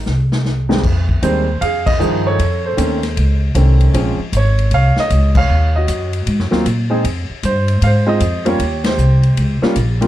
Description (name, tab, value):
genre	jazz piano trio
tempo	155 BPM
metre	4/4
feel	swing 65% on 8ths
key	F minor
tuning	A4 = 440 Hz
part	warm baby grand piano	melody	0.0-10.1 s	F2 to F5	-18 LUFS	right 1 dB	none
part	upright bass	bass	0.1-10.1 s	Ab1 to Bb2	-15 LUFS	equal	none
part	swinging big-band drum kit	drums	0.1-10.1 s	crash cymbal, hi-hat, kick drum, ride cymbal, snare drum	-22 LUFS	left 2 dB	none
room	little or no reverb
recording	dark, warm production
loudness	-13 LUFS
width	side -13 dB against mid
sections	0.8-10.1 A section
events	drum fill 0.1-0.8; band accent 1.8, 5.3, 8.8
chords	0.0 N.C.; 0.8 Fm7; 2.4 F7b13; 3.9 Bbm7; 5.5 Ebm7; 6.3 Ab9; 7.0 Dbmaj7 (rootless); 8.6 Eb7